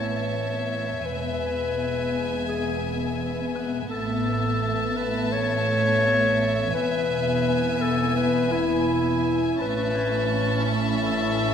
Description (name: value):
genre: cinematic, suspense film score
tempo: 84 BPM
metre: 4/4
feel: straight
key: unclear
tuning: A4 = 441 Hz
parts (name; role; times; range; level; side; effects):
- warm chamber violin section; melody; 0.0-11.5 s; G#5 to A5; -33 LUFS; left 3 dB; none
- clear clarinet; second line; 0.0-11.5 s; E4 to C#5; -26 LUFS; left 2 dB; none
- warm chamber violin section; second line; 0.0-11.5 s; E5; -33 LUFS; left 3 dB; none
- dark studio viola section; accompaniment; 0.0-11.5 s; B3 to C#4; -30 LUFS; left 2 dB; none
- dark French horn section; sustained chords; 0.0-11.5 s; E3 to C#4; -32 LUFS; left 4 dB; none
- dark chamber cello section; bass; 0.0-11.5 s; E2 to A2; -32 LUFS; right 6 dB; none
- dark chamber double bass section; bass; 0.0-11.5 s; E1 to A1; -30 LUFS; right 5 dB; none
- concert harp; texture; 3.6-11.5 s; F#6 to G#6; -44 LUFS; equal; none
- dark chamber violin section; texture; 9.6-11.5 s; B5 to E6; -38 LUFS; left 4 dB; none
room: moderate concert hall reverb, RT60 1.8 s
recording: none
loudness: -22 LUFS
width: side -8 dB against mid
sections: 0.0-11.5 A section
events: none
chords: 0.0 Aadd9; 1.0 E; 3.9 Aadd9; 6.7 E; 9.6 Aadd9